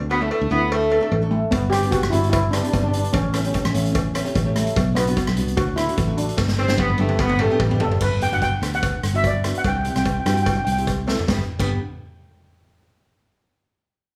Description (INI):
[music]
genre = calypso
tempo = 148 BPM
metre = 4/4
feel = swing 54% on 16ths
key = G major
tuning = A4 = 441 Hz
[part]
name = steel pan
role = melody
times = 0.0-10.8 s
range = A3 to G5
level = -26 LUFS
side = equal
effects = plate reverb, tape echo
[part]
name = fingered electric bass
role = bass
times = 0.0-11.8 s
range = G1 to G2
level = -25 LUFS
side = equal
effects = none
[part]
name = bright horn section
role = second line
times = 0.1-1.2, 6.6-8.0, 11.3-11.8 s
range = G3 to C4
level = -24 LUFS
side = equal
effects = none
[part]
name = nylon-string guitar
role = accompaniment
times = 0.1-11.8 s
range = A3 to A4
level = -30 LUFS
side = equal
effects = none
[part]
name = cowbell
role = percussion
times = 0.1-11.8 s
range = none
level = -34 LUFS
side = equal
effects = none
[part]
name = street-band drum kit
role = drums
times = 1.5-11.7 s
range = crash cymbal, hi-hat, kick drum, rim click, snare drum, toms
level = -27 LUFS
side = equal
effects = none
[sound]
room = moderate studio reverb, RT60 0.6 s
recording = small room ambience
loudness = -21 LUFS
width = mono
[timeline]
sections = 0.0-8.0 A section; 8.0-11.3 B section; 11.3-12.9 C section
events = drum fill 6.4-8.0, 11.1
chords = 0.0 D5; 1.5 G; 3.1 A; 4.8 Bm; 5.6 D; 6.4 Gadd9; 8.0 G; 9.6 C; 11.3 G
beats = 0.31 0.71 1.12 | 1.52 1.93 2.33 2.74 | 3.14 3.54 3.95 4.36 | 4.76 5.17 5.57 5.98 | 6.38 6.79 7.20 7.61 | 8.01 8.42 8.83 9.24 | 9.64 10.05 10.46 10.87 | 11.28 11.69